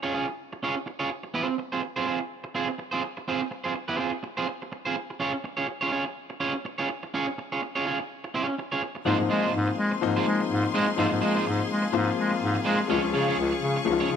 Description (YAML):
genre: disco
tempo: 124 BPM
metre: 4/4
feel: swing 56% on 16ths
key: Ab major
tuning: A4 = 439 Hz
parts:
  - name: electric guitar at the edge of break-up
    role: accompaniment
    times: 0.0-14.1 s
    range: Ab3 to Db5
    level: -28 LUFS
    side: right 4 dB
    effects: none
  - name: warm concert grand piano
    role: accompaniment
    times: 9.1-14.2 s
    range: F3 to F4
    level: -27 LUFS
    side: left 8 dB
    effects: none
  - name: rich symphonic string section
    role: sustained chords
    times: 9.1-14.2 s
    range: Ab4 to Db6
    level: -32 LUFS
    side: left 4 dB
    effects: none
  - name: warm bass clarinet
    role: bass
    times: 9.1-14.2 s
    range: Db2 to Ab3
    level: -26 LUFS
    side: left 1 dB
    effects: none
room: light reverb, small room ambience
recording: none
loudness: -25 LUFS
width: side -8 dB against mid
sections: 0.0-9.1 A section; 9.1-14.2 B section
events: none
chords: 0.0 Db; 1.3 Ab6; 5.2 Db; 9.1 Ab6; 12.9 Db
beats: 0.38 0.86 | 1.34 1.82 2.31 2.79 | 3.27 3.75 4.24 4.72 | 5.20 5.69 6.17 6.65 | 7.13 7.62 8.10 8.58 | 9.06 9.54 10.02 10.50 | 10.98 11.46 11.94 12.42 | 12.89 13.38 13.85